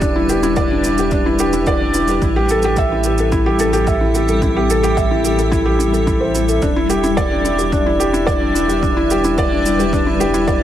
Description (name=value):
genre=piano and strings electronica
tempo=109 BPM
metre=4/4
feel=straight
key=E minor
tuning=A4 = 441 Hz
part: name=granular cloud pad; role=sustained chords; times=0.0-10.6 s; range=G3 to E5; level=-23 LUFS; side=left 2 dB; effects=built-in reverb, sidechain pumping
part: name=felt-muted upright piano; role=riff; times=0.0-10.6 s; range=D4 to E5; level=-16 LUFS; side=equal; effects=tape echo
part: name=round analog bass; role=bass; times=0.0-10.6 s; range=E1 to A1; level=-22 LUFS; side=equal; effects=sidechain pumping
part: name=electronic kick drum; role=drums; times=0.0-10.6 s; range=none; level=-22 LUFS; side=equal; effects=overdrive
part: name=shaker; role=drums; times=0.0-10.6 s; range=none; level=-30 LUFS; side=right 6 dB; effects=overdrive
room=light reverb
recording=none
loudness=-13 LUFS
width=side -11 dB against mid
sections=0.0-10.6 A section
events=none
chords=0.0 Em7; 2.2 Am7; 6.6 Em7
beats=| 0.02 0.57 1.12 1.67 | 2.22 2.77 3.32 3.87 | 4.42 4.97 5.52 6.07 | 6.62 7.17 7.72 8.28 | 8.82 9.38 9.93 10.48